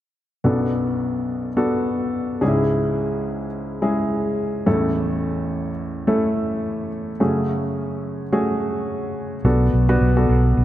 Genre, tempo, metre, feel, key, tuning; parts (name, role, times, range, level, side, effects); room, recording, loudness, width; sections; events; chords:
pop; 107 BPM; 4/4; swing 56% on 16ths; A4 = 440 Hz
warm upright piano; accompaniment; 0.4-10.6 s; A1 to B4; -20 LUFS; equal
fingered electric bass; bass; 9.4-10.6 s; B1; -16 LUFS; right 1 dB
moderate lush hall reverb, RT60 2.5 s; -19 LUFS; side -13 dB against mid
0.4-9.5 A section; 9.5-10.6 B section
0.4 Bm7; 2.4 C#m; 4.7 A; 7.2 F#madd9; 9.5 Bm7